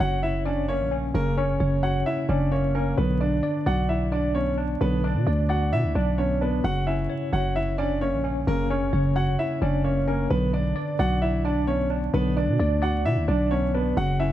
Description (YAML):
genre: hip hop, trap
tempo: 131 BPM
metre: 4/4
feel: half-time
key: B harmonic minor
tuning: A4 = 440 Hz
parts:
  - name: dark concert grand piano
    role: melody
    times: 0.0-14.3 s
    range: A#3 to F#5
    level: -27 LUFS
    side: right 1 dB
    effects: digital delay
  - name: tine electric piano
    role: accompaniment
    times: 0.0-14.3 s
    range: C#3 to D5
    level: -28 LUFS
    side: left 1 dB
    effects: overdrive, fast stereo tremolo
  - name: growling 808-style bass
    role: bass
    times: 0.0-14.3 s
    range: F#1 to B2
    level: -24 LUFS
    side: equal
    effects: none
room: light reverb, small room ambience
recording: vinyl crackle, nothing above 10.5 kHz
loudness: -22 LUFS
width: side -12 dB against mid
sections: 0.0-10.3 A section; 10.3-14.3 B section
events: none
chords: 0.0 F#; 3.0 Bm; 6.6 F#; 10.3 Bm